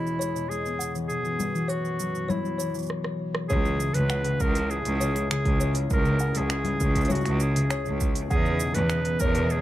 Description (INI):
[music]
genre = folktronica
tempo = 100 BPM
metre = 4/4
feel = straight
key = C# minor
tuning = A4 = 440 Hz
[part]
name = bright clarinet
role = melody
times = 0.0-9.6 s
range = E4 to B4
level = -30 LUFS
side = right 1 dB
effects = vintage 12-bit sampler grit, ping-pong delay, plate reverb
[part]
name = warm analog pad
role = sustained chords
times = 0.0-9.6 s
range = E2 to D#5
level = -38 LUFS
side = right 1 dB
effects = chorus, tremolo
[part]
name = concert harp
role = arpeggios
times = 0.0-9.6 s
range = B2 to E4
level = -29 LUFS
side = left 1 dB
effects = low-pass filter
[part]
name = organic electronic drum kit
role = drums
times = 0.1-9.6 s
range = congas, finger snaps, hi-hat, rim click, shaker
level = -33 LUFS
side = equal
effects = none
[part]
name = music box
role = second line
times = 0.2-9.5 s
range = C#5 to F#5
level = -36 LUFS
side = left 6 dB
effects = ping-pong delay, plate reverb
[part]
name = bright cello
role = bass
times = 3.5-9.6 s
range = C#2 to E2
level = -27 LUFS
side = right 1 dB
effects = none
[part]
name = electronic kick drum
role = drums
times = 3.5-9.3 s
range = none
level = -26 LUFS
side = right 1 dB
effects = overdrive
[sound]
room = light reverb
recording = none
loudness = -23 LUFS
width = side -14 dB against mid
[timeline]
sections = 0.0-3.5 A section; 3.5-9.6 B section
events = drum fill 2.9-3.5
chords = 0.0 Emaj7; 1.1 F#7sus4; 3.5 C#m; 8.3 Emaj7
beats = 0.51 | 1.11 1.71 2.31 2.91 | 3.51 4.11 4.71 5.31 | 5.91 6.51 7.11 7.71 | 8.31 8.91 9.51